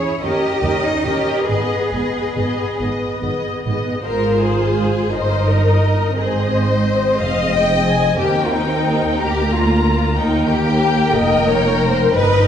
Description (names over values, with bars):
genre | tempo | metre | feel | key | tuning
classical, slow romantic movement for string orchestra | 45-63 BPM (dotted quarters) | 6/8 | rubato | G# minor, Ab major from 4.1 s | A4 = 440 Hz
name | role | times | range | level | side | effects
rich studio violin section | melody | 0.0-12.5 s | C5 to Bb5 | -24 LUFS | left 2 dB | none
rich studio violin section | second line | 0.0-12.5 s | Eb4 to D#5 | -20 LUFS | left 3 dB | none
dark studio viola section | accompaniment | 0.0-12.5 s | Bb3 to Eb5 | -21 LUFS | equal | none
rich studio cello section | bass | 0.0-12.5 s | D2 to G#4 | -22 LUFS | right 2 dB | none
warm studio double bass section | bass | 0.2-12.5 s | F1 to D#2 | -21 LUFS | right 2 dB | none
room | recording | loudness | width
wet recital hall reverb, RT60 1.6 s | recorded in a church or concert hall, nothing above 10.3 kHz | -15 LUFS | side -9 dB against mid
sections
0.0-4.1 A section; 4.1-12.5 B section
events
none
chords
0.2 D#7; 1.5 G#m; 4.1 Ab; 5.1 Eb/G; 6.2 Ab; 8.2 Eb; 9.2 Bb/D; 10.2 Eb